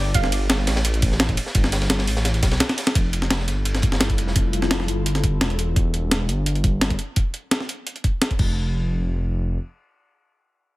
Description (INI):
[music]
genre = liquid drum and bass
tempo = 171 BPM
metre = 4/4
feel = straight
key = F lydian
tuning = A4 = 438 Hz
[part]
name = soft round pluck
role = melody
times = 0.0-2.6 s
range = D5 to F5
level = -30 LUFS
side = right 5 dB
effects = chorus, digital delay
[part]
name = dark detuned saw bass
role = bass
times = 0.0-9.6 s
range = E1 to B1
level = -22 LUFS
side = equal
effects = none
[part]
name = breakbeat sampler-style drum kit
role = drums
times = 0.1-8.5 s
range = crash cymbal, hi-hat, ride cymbal, snare drum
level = -23 LUFS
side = equal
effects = none
[part]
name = crunchy breakbeat drum kit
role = drums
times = 0.1-4.4 s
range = ride cymbal, snare drum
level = -29 LUFS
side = equal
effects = high-pass filter on cymbals, high-pass filter on hats, high-pass filter on snare, high-pass filter on room
[part]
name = electronic kick drum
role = drums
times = 0.1-8.5 s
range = none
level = -21 LUFS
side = equal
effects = none
[part]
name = glassy FM pad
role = sustained chords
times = 3.6-5.8 s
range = G3 to A4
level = -30 LUFS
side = left 4 dB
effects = ensemble chorus, built-in reverb, phaser
[sound]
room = small room ambience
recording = none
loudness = -19 LUFS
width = side -19 dB against mid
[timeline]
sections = 0.0-3.0 A section; 3.0-8.6 B section; 8.6-10.8 C section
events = drop 0.0-3.0; drum fill 2.7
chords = 0.0 G7sus2; 3.0 Fmaj9; 5.6 Em; 8.4 N.C.